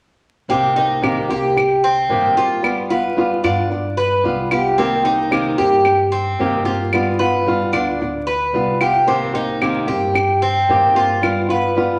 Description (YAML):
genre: latin, Cuban son and guajira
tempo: 112 BPM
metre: 4/4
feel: straight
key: C minor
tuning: A4 = 440 Hz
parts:
  - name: flamenco guitar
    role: accompaniment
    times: 0.5-12.0 s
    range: C3 to G4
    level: -22 LUFS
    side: equal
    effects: none
  - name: Cuban tres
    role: arpeggios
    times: 0.5-12.0 s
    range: C4 to B4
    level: -20 LUFS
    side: equal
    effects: none
  - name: upright bass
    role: bass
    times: 0.5-12.0 s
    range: G1 to G2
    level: -30 LUFS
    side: equal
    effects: none
  - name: claves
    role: percussion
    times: 1.0-11.5 s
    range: none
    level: -27 LUFS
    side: equal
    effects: none
room: wet large studio reverb, RT60 1.4 s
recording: vinyl crackle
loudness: -17 LUFS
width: mono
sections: 0.5-12.0 A section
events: none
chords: 0.5 Cm7; 2.6 G7; 4.8 Cm7; 6.9 G7; 9.1 Cm7; 11.2 G7